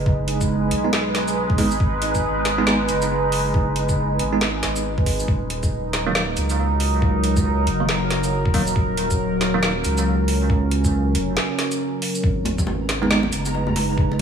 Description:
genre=deep dubstep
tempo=138 BPM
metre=4/4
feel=swing 60% on 16ths, half-time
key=G# minor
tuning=A4 = 440 Hz
part: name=deep dark ambient pad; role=sustained chords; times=0.0-14.2 s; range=F#3 to B4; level=-23 LUFS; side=right 1 dB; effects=chorus, built-in reverb
part: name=saturated sub bass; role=bass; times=0.0-14.2 s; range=D#1 to C#2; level=-24 LUFS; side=equal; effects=none
part: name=electronic kick drum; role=drums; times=0.1-14.1 s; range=none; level=-21 LUFS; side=equal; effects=overdrive
part: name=garage drum kit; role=drums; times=0.3-14.2 s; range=hi-hat, shaker, snare drum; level=-25 LUFS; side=right 1 dB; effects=overdrive
part: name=bell-like tine electric piano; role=stabs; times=0.8-9.7, 13.0-13.2 s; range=D#3 to D#4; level=-26 LUFS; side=right 3 dB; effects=medium stereo tremolo, dub echo
part: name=backwards swelling texture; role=texture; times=12.8-14.2 s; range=A#5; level=-32 LUFS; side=equal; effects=built-in reverb
part: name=congas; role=percussion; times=12.5-14.2 s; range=none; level=-27 LUFS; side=left 1 dB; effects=dub echo
room=light reverb, digital ambience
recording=small room ambience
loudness=-18 LUFS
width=side -7 dB against mid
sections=0.0-14.2 A section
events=break 11.4-12.2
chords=0.0 G#m; 5.3 D#m; 12.2 G#m

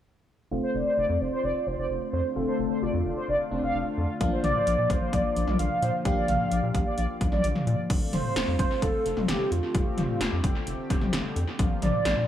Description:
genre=synth-pop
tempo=130 BPM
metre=4/4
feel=straight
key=F major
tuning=A4 = 441 Hz
part: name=FM electric piano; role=accompaniment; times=0.5-7.9 s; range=A3 to G4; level=-33 LUFS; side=left 2 dB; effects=chorus, phaser, low-pass filter, tape echo
part: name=chorused pulse-width pad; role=sustained chords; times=0.5-12.3 s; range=D3 to G4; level=-33 LUFS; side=left 2 dB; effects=low-pass filter
part: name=round analog bass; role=bass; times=0.5-12.3 s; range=F1 to Bb2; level=-30 LUFS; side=equal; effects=none
part: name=mellow synth brass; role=second line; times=0.6-7.5 s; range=C5 to F5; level=-32 LUFS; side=equal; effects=chorus, tape echo
part: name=warm velvety synth lead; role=melody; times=0.7-12.3 s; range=F4 to F5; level=-29 LUFS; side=right 1 dB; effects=chorus, low-pass filter, tape echo
part: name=80s electronic pad drums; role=drums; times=4.2-12.2 s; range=crash cymbal, hi-hat, kick drum, snare drum, toms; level=-28 LUFS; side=equal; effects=gated reverb on snare and toms, overdrive, tape echo
room=moderate echo chamber reverb, RT60 1.4 s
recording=echo-heavy mix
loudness=-24 LUFS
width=side -11 dB against mid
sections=0.5-7.9 A section; 7.9-12.3 B section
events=filter sweep 0.5-7.9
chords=0.5 F6; 4.2 Bb; 7.9 F6; 11.6 Bb

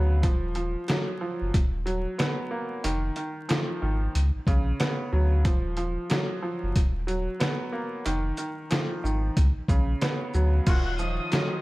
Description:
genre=hip hop, boom-bap hip-hop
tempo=92 BPM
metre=4/4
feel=swing 62% on 16ths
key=Eb minor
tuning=A4 = 441 Hz
part: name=bright upright piano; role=accompaniment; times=0.0-11.6 s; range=Db3 to F4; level=-31 LUFS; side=right 1 dB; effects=high-pass filter, low-pass filter
part: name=warm sub bass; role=bass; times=0.0-11.2 s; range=Eb1 to D2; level=-26 LUFS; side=equal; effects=none
part: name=trip hop sampler-style drum kit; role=drums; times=0.2-11.5 s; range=crash cymbal, hi-hat, kick drum, shaker, snare drum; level=-26 LUFS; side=equal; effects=none
part: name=warm studio string section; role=sustained chords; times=10.7-11.6 s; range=Eb3 to F5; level=-37 LUFS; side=left 1 dB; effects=high-pass filter, low-pass filter
part: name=warm horn section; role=stabs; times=10.7-10.9 s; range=Bb3 to Gb4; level=-37 LUFS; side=left 3 dB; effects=high-pass filter, low-pass filter, ping-pong delay
part: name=warm studio violin section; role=melody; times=10.9-11.6 s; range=Eb6 to Gb6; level=-34 LUFS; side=equal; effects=high-pass filter, low-pass filter
room=studio reverb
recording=vinyl crackle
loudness=-24 LUFS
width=side -20 dB against mid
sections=0.0-10.7 A section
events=none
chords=0.2 Ebmadd9; 1.5 Ebm; 2.8 Fm7; 4.1 Db7sus4; 5.4 Ebmadd9; 6.8 Ebm; 8.1 Fm7; 9.4 Db7sus4; 10.7 Ebm9

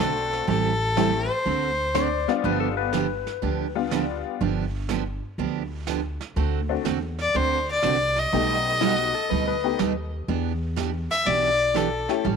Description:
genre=country, western swing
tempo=122 BPM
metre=4/4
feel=swing 68% on 8ths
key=unclear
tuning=A4 = 441 Hz
part: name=clear fiddle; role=melody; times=0.0-2.3, 7.2-12.2 s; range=A4 to E5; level=-23 LUFS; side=left 2 dB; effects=tape echo
part: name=honky-tonk upright piano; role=accompaniment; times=0.0-12.2 s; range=G3 to G4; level=-28 LUFS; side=left 13 dB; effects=none
part: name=picked steel-string acoustic guitar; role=accompaniment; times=0.0-12.4 s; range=B2 to A4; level=-27 LUFS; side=right 14 dB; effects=none
part: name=upright bass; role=bass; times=0.0-12.4 s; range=G1 to E2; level=-29 LUFS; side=equal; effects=none
part: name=vintage brush drum kit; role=drums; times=0.3-12.4 s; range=brushed snare drum, hi-hat, snare drum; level=-38 LUFS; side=right 10 dB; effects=none
part: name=clean lap steel guitar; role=second line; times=2.0-4.2, 8.8-9.9 s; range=F#4 to D5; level=-28 LUFS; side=left 16 dB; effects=none
room=moderate spring reverb, RT60 1.6 s, small room reverb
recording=1960s-style stereo with parts hard left and right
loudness=-22 LUFS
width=side -6 dB against mid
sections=0.0-12.4 A section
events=none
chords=0.5 Am7; 1.5 D7; 2.4 G7; 6.4 D7; 8.3 B7alt; 10.3 Em7

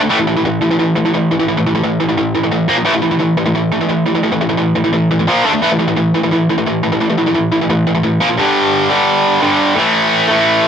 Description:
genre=metal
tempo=174 BPM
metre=4/4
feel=straight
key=unclear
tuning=A4 = 440 Hz
part: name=distorted electric guitar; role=solo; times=0.0-10.7 s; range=G2 to D4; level=-12 LUFS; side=equal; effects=overdrive
room=light reverb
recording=none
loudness=-12 LUFS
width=side -8 dB against mid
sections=0.0-8.4 A section; 8.4-10.7 B section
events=none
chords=0.1 A5; 2.7 Bb5; 2.9 A5; 5.3 Bb5; 5.4 D5; 5.6 A5; 8.2 Bb5; 8.4 G5; 9.8 A5

